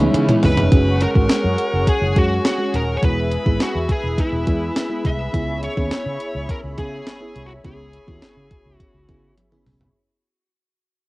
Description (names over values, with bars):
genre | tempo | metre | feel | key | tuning
1980s-style pop | 104 BPM | 4/4 | straight | unclear | A4 = 440 Hz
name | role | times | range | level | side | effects
smooth overdriven lead guitar | melody | 0.0-9.3 s | B3 to E5 | -24 LUFS | equal | tape echo, plate reverb
FM electric piano with soft pad layer | accompaniment | 0.0-10.0 s | E3 to G#4 | -24 LUFS | right 1 dB | chorus, cassette tape
thick fuzz guitar | accompaniment | 0.0-1.2 s | C#3 to C#4 | -28 LUFS | right 1 dB | distortion, lush chorus, cassette tape
brassy analog pad | sustained chords | 0.0-9.9 s | G#4 to C#6 | -28 LUFS | left 1 dB | chorus, cassette tape, plate reverb
fretless electric bass | bass | 0.0-9.9 s | D#1 to C#3 | -22 LUFS | equal | lush chorus
clean 12-bit digital drum machine | drums | 0.1-9.9 s | hi-hat, kick drum, snare drum, tambourine, toms | -19 LUFS | equal | overdrive, cassette tape
room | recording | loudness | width
light reverb | home recording on cassette, faint mains hum | -17 LUFS | side -20 dB against mid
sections
0.7-10.0 A section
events
drum fill 0.0-0.7, 9.4-10.0; fade-out 0.7-10.0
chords
0.0 C#m7; 0.7 F#sus2; 3.0 E; 5.3 C#m7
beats
0.14 | 0.72 1.30 1.87 2.45 | 3.03 3.60 4.18 4.76 | 5.33 5.91 6.49 7.07 | 7.64 8.22 8.80 9.37